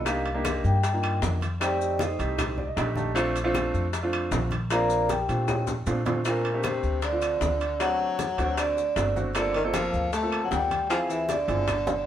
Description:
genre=Afro-Cuban jazz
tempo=155 BPM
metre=4/4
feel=straight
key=Bb major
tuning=A4 = 440 Hz
part: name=vibraphone with medium hard mallets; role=melody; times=0.0-12.1 s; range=Eb4 to Bb5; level=-28 LUFS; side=equal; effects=none
part: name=upright bass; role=bass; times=0.0-12.0 s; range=G1 to Bb2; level=-30 LUFS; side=equal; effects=none
part: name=warm grand piano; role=accompaniment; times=0.1-11.7 s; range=A3 to A5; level=-30 LUFS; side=right 1 dB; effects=none
part: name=bongos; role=percussion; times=0.1-12.1 s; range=none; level=-35 LUFS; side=left 5 dB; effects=none
part: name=claves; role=percussion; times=0.1-11.9 s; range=none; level=-40 LUFS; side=left 3 dB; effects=none
part: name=congas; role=percussion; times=0.1-12.0 s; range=none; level=-35 LUFS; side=left 1 dB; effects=none
part: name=maracas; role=percussion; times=0.1-12.1 s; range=none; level=-44 LUFS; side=left 6 dB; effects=none
part: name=timbales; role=percussion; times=0.1-11.9 s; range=none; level=-35 LUFS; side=right 4 dB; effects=none
part: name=mellow baritone saxophone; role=second line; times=6.3-12.1 s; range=Bb2 to A3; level=-32 LUFS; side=left 3 dB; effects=none
room=moderate stone room reverb, RT60 1.0 s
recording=band playing live in one room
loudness=-24 LUFS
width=side -10 dB against mid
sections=0.0-6.3 A section; 6.3-12.1 B section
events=vibraphone solo 0.0-6.3; grand piano fill 2.4-3.2; drum fill 5.5-6.3, 11.3-12.1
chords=0.1 Cm7; 1.6 F13; 3.2 Bbmaj7; 7.8 D7; 9.4 Gm11; 10.9 Dm7b5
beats=| 0.06 0.45 0.84 1.22 | 1.61 2.00 2.39 2.77 | 3.16 3.55 3.93 4.32 | 4.71 5.09 5.48 5.87 | 6.25 6.64 7.03 7.42 | 7.80 8.19 8.58 8.96 | 9.35 9.74 10.13 10.51 | 10.90 11.29 11.68

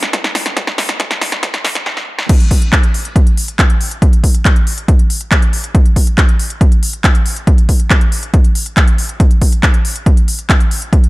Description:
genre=trance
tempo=139 BPM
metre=4/4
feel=straight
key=none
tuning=none
part: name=techno drum kit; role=drums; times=0.0-11.1 s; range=crash cymbal, handclaps, hi-hat, snare drum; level=-17 LUFS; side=equal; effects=studio ambience
part: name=electronic kick drum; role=drums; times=0.1-11.0 s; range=none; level=-10 LUFS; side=equal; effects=high-pass filter on kick, studio ambience
room=little or no reverb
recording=dark, warm production, high-pass filter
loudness=-10 LUFS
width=side -20 dB against mid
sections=0.0-2.3 A section; 2.3-11.1 B section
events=build-up 0.0-2.3; drum fill 0.0-1.9, 1.9-2.3; drop 2.3-11.1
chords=none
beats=0.14 | 0.57 1.00 1.43 1.86 | 2.29 2.73 3.16 3.59 | 4.02 4.45 4.88 5.32 | 5.75 6.18 6.61 7.04 | 7.47 7.91 8.34 8.77 | 9.20 9.63 10.06 10.49 | 10.93

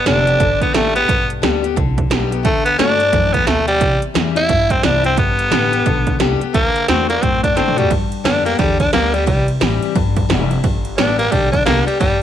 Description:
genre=rockabilly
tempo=176 BPM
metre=4/4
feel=swing 62% on 8ths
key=G major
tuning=A4 = 440 Hz
part: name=breathy tenor saxophone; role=melody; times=0.0-12.2 s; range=G3 to E4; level=-16 LUFS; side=equal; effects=none
part: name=picked steel-string acoustic guitar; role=accompaniment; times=0.0-12.2 s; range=G2 to G4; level=-20 LUFS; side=left 10 dB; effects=none
part: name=upright bass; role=bass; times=0.0-12.2 s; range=F1 to A2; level=-22 LUFS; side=equal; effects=none
part: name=80s electronic pad drums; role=drums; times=0.1-12.1 s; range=hi-hat, kick drum, ride cymbal, snare drum, toms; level=-19 LUFS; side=right 3 dB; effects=gated reverb on snare and toms
room=light reverb, small room ambience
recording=1960s-style stereo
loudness=-13 LUFS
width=side -10 dB against mid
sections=0.0-7.9 A section; 7.9-12.2 A section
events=drum fill 7.6-7.9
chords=0.0 G; 2.4 D; 3.8 C; 5.2 G; 6.5 D; 7.9 G; 9.3 C; 10.6 G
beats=0.06 0.40 0.74 | 1.08 1.42 1.76 2.10 | 2.45 2.79 3.13 3.47 | 3.81 4.15 4.49 4.83 | 5.18 5.52 5.86 6.20 | 6.54 6.88 7.22 7.57 | 7.91 8.25 8.59 8.93 | 9.27 9.61 9.96 10.30 | 10.64 10.98 11.32 11.66 | 12.00

